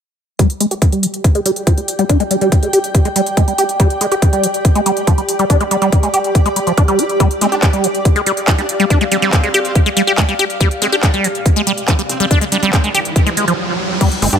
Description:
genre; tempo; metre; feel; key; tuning
psychedelic trance; 141 BPM; 4/4; straight; unclear; A4 = 440 Hz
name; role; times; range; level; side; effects
liquid acid bass; riff; 0.4-14.4 s; F3 to G4; -16 LUFS; equal; phaser, auto-pan, sidechain pumping, tape echo
electronic kick drum; drums; 0.4-14.1 s; none; -12 LUFS; equal; none
techno drum kit; drums; 0.4-14.4 s; crash cymbal, handclaps, hi-hat, rim click; -20 LUFS; equal; overdrive
granular cloud pad; texture; 1.1-13.6 s; G4 to G5; -21 LUFS; right 1 dB; built-in reverb, sidechain pumping
metallic wobble bass; second line; 7.4-14.4 s; C4 to D4; -28 LUFS; right 2 dB; distortion, lush chorus, sidechain pumping, high-pass filter, ping-pong delay
riser; sound effects; 11.7-14.0 s; none; -23 LUFS; right 1 dB; none
evolving wavetable pad; sustained chords; 14.2-14.4 s; D4; -33 LUFS; right 7 dB; none
tight sequencer bass; bass; 14.2-14.4 s; G1 to G2; -15 LUFS; equal; none
room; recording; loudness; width
light reverb; none; -12 LUFS; side -8 dB against mid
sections
0.4-14.0 A section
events
filter sweep on acid bass 0.4-14.0; riser 11.7-14.0; stop 13.6-14.0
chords
0.4 G5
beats
| 0.39 0.82 1.24 1.67 | 2.10 2.52 2.95 3.37 | 3.80 4.22 4.65 5.07 | 5.50 5.92 6.35 6.78 | 7.20 7.63 8.05 8.48 | 8.90 9.33 9.75 10.18 | 10.61 11.03 11.46 11.88 | 12.31 12.73 13.16 13.58 | 14.01

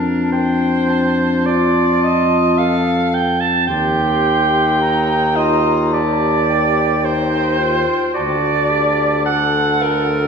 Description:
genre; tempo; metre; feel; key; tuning
classical, lyrical piece for single-reed quartet; 54 BPM; 4/4; rubato; unclear; A4 = 440 Hz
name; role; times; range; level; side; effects
dark soprano saxophone; melody; 0.0-10.1 s; G5 to C6; -25 LUFS; left 7 dB; none
bright alto saxophone; second line; 0.0-10.3 s; Bb4 to A5; -17 LUFS; right 4 dB; none
bright clarinet; accompaniment; 0.0-10.3 s; D4 to A4; -22 LUFS; left 3 dB; none
mellow baritone saxophone; bass; 0.0-10.3 s; D2 to F2; -18 LUFS; equal; none
room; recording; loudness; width
wet recital hall reverb, RT60 1.7 s; heard from further back in the room; -14 LUFS; side -6 dB against mid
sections
0.0-10.3 A section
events
none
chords
0.0 Dm/F; 3.7 Cm/Eb; 8.1 D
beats
0.32 1.46 2.58 | 3.69 4.81 5.93 7.05 | 8.14 9.26

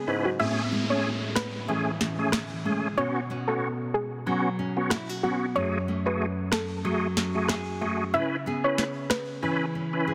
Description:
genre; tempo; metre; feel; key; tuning
dancehall; 93 BPM; 4/4; swing 56% on 16ths; A major; A4 = 440 Hz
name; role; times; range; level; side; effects
nylon-string guitar; arpeggios; 0.0-10.1 s; F#2 to G#4; -33 LUFS; equal; none
bright tonewheel organ; accompaniment; 0.1-10.1 s; A3 to B4; -32 LUFS; equal; chorus vibrato, fast rotary speaker
soft round pluck; melody; 0.3-9.3 s; F#4 to E5; -33 LUFS; equal; chorus, digital delay
downlifter; sound effects; 0.4-5.6 s; none; -37 LUFS; equal; none
electronic rim click and snare drum; drums; 1.4-9.3 s; none; -32 LUFS; equal; none
room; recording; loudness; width
light reverb; dense, heavily limited modern master; -28 LUFS; mono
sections
0.4-10.1 A section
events
none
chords
0.4 Amaj7; 3.0 Bsus2; 5.6 F#madd9; 8.1 C#m7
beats
| 0.40 1.04 1.69 2.33 | 2.98 3.62 4.27 4.91 | 5.56 6.20 6.85 7.49 | 8.14 8.78 9.43 10.07

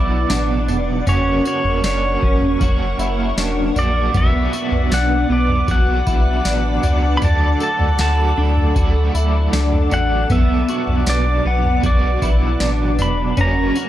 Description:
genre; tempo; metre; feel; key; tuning
dream pop; 78 BPM; 4/4; straight; B minor; A4 = 440 Hz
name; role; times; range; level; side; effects
pedal steel guitar; melody; 0.0-13.9 s; C#5 to B5; -23 LUFS; equal; digital delay
raw garage guitar; accompaniment; 0.0-13.9 s; F#2 to F#4; -24 LUFS; right 5 dB; overdrive, tremolo, ensemble chorus
hollow soft pad; sustained chords; 0.0-13.9 s; A4 to D6; -27 LUFS; left 1 dB; ensemble chorus
twelve-string electric guitar; arpeggios; 0.0-13.9 s; B3 to A4; -24 LUFS; left 2 dB; ensemble chorus, digital delay
warm sub bass; bass; 0.0-13.7 s; E1 to D2; -19 LUFS; equal; none
drifting glass-harmonics texture; texture; 0.7-10.6 s; D5 to B5; -34 LUFS; left 2 dB; chorus, built-in reverb, digital delay
booming analog drum machine; drums; 0.3-13.9 s; kick drum, snare drum, tambourine, toms; -20 LUFS; equal; none
room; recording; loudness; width
little or no reverb; dark, warm production; -15 LUFS; side -13 dB against mid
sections
0.0-13.9 A section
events
none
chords
0.0 Bm; 1.1 F#; 4.1 Bm; 13.4 F#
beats
0.30 | 1.07 1.84 2.60 3.38 | 4.14 4.91 5.68 6.45 | 7.22 7.99 8.76 9.53 | 10.30 11.07 11.84 12.61 | 13.38

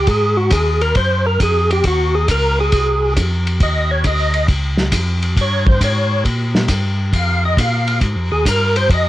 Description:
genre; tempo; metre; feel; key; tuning
soul jazz organ trio; 136 BPM; 4/4; swing 68% on 8ths; unclear; A4 = 441 Hz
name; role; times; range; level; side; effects
percussive tonewheel organ; melody; 0.0-9.1 s; Gb4 to F5; -17 LUFS; equal; overdrive, chorus vibrato, slow rotary speaker
mellow tonewheel organ; bass; 0.0-9.1 s; C2 to Bb2; -18 LUFS; equal; chorus vibrato, slow rotary speaker, tube saturation
warm soul drum kit; drums; 0.1-9.0 s; hi-hat, kick drum, ride cymbal, snare drum; -18 LUFS; equal; cassette tape
room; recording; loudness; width
little or no reverb; home recording on cassette; -14 LUFS; side -15 dB against mid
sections
0.0-9.1 A section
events
tonewheel organ solo 0.0-9.1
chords
0.1 Ab6; 3.6 Ebsus2; 5.4 Gdim; 7.1 Fm7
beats
| 0.08 0.52 0.96 1.41 | 1.85 2.29 2.73 3.17 | 3.61 4.05 4.49 4.93 | 5.38 5.82 6.26 6.70 | 7.14 7.58 8.02 8.46 | 8.90

